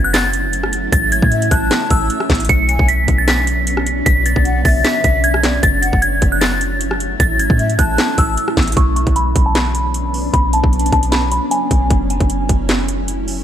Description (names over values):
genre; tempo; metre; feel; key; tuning
hip hop, trap; 153 BPM; 4/4; half-time; B dorian; A4 = 437 Hz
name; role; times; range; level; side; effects
glassy synth bell; melody; 0.0-11.9 s; G#5 to C#7; -18 LUFS; equal; chorus, low-pass filter, tape echo
granular cloud pad; sustained chords; 0.0-13.4 s; E3 to E4; -22 LUFS; right 2 dB; built-in reverb
clean 808-style bass; bass; 0.0-13.4 s; F#1 to A2; -18 LUFS; equal; none
trap drum kit; drums; 0.1-13.4 s; handclaps, hi-hat, kick drum, rim click, snare drum; -17 LUFS; equal; overdrive
breathy hollow jazz flute; second line; 1.3-8.3 s; D5 to A5; -26 LUFS; left 6 dB; tape echo
room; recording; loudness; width
little or no reverb; none; -13 LUFS; side -10 dB against mid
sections
0.0-8.8 A section; 8.8-13.4 B section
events
filter sweep on synth bell 8.8-13.4; break 11.9-13.4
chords
0.0 F#m7; 0.9 A; 2.5 Bmadd9; 5.6 F#m7; 7.2 A; 8.8 Bmadd9; 11.9 F#m7